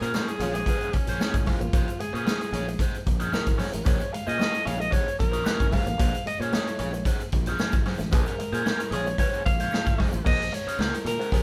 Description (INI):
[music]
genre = funk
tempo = 113 BPM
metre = 4/4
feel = straight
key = Bb minor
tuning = A4 = 440 Hz
[part]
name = breathy alto saxophone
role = melody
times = 0.0-11.4 s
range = Db4 to F5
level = -33 LUFS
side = equal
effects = none
[part]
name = warm horn section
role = second line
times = 0.0-0.7, 8.1-11.4 s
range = F3 to Ab4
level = -39 LUFS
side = equal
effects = none
[part]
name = crunchy overdriven guitar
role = accompaniment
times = 0.0-11.4 s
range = Db4 to Db5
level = -35 LUFS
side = equal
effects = wah
[part]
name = fingered electric bass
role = bass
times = 0.0-11.4 s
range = Ab1 to Bb2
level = -35 LUFS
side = equal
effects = none
[part]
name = swinging big-band drum kit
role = drums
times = 0.0-11.4 s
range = crash cymbal, hi-hat, kick drum, snare drum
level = -28 LUFS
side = equal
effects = none
[part]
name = tube shaker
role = percussion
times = 0.0-10.2 s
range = none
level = -55 LUFS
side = equal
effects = none
[part]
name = electric guitar with an envelope filter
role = riff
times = 0.1-11.4 s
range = F3 to Bb3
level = -41 LUFS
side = equal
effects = none
[part]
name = congas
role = percussion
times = 0.1-11.4 s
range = none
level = -40 LUFS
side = equal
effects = none
[sound]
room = light reverb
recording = band playing live in one room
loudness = -26 LUFS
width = mono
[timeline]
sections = 0.0-10.3 A section; 10.3-11.4 B section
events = band accent 0.0-1.7, 8.1-10.3; alto saxophone solo 0.0-10.3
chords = 0.0 Bbm9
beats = 0.14 0.67 1.20 | 1.74 2.27 2.80 3.33 | 3.87 4.40 4.93 5.46 | 6.00 6.53 7.06 7.60 | 8.13 8.66 9.19 9.73 | 10.26 10.79 11.32